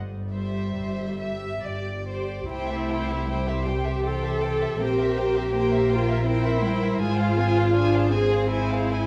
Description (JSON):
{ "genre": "classical, slow romantic movement for string orchestra", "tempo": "68-82 BPM", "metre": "3/4", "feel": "rubato", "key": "C major", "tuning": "A4 = 439 Hz", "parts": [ { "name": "dark chamber cello section", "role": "bass", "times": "0.0-9.1 s", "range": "E3 to D4", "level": "-32 LUFS", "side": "equal", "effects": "none" }, { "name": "warm chamber double bass section", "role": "bass", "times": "0.0-9.1 s", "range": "G1 to C2", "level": "-30 LUFS", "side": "equal", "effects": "none" }, { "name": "warm chamber violin section", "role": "melody", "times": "0.3-9.1 s", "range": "D5 to Ab5", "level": "-38 LUFS", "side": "equal", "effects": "none" }, { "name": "rich studio violin section", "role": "second line", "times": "0.3-9.1 s", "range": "G4 to E5", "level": "-34 LUFS", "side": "equal", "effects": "none" }, { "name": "warm chamber viola section", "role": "accompaniment", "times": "0.3-9.1 s", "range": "E4 to A4", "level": "-28 LUFS", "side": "equal", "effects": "none" } ], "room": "wet recital hall reverb, RT60 1.2 s", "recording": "dark, warm production", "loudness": "-24 LUFS", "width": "mono", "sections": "0.0-2.5 A section; 2.5-9.1 B section", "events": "none", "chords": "0.0 C/G; 2.5 C; 4.8 C7/Bb; 7.0 Fm/Ab" }